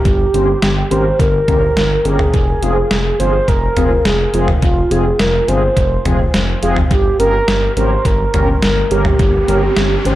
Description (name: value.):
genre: synth-pop.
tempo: 105 BPM.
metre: 4/4.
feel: straight.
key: unclear.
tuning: A4 = 439 Hz.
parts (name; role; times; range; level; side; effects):
mellow horn-like synth lead; melody; 0.0-10.2 s; F4 to C5; -17 LUFS; right 2 dB; chorus, tape echo.
smooth gliding synth bass; bass; 0.1-10.2 s; F1 to Ab1; -17 LUFS; equal; none.
detuned 8-bit digital drum machine; drums; 0.1-10.2 s; hi-hat, kick drum, snare drum, toms; -17 LUFS; equal; tape echo.
mellow synth brass; accompaniment; 0.3-10.2 s; C4 to C5; -21 LUFS; left 2 dB; chorus, tape echo.
riser; sound effects; 8.3-10.2 s; none; -26 LUFS; equal; none.
room: moderate spring reverb, RT60 2.8 s.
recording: echo-heavy mix.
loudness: -12 LUFS.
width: side -14 dB against mid.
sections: 0.0-10.2 A section.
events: riser 8.3-10.2.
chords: 0.0 Gdim; 2.3 Fm; 6.9 Gdim.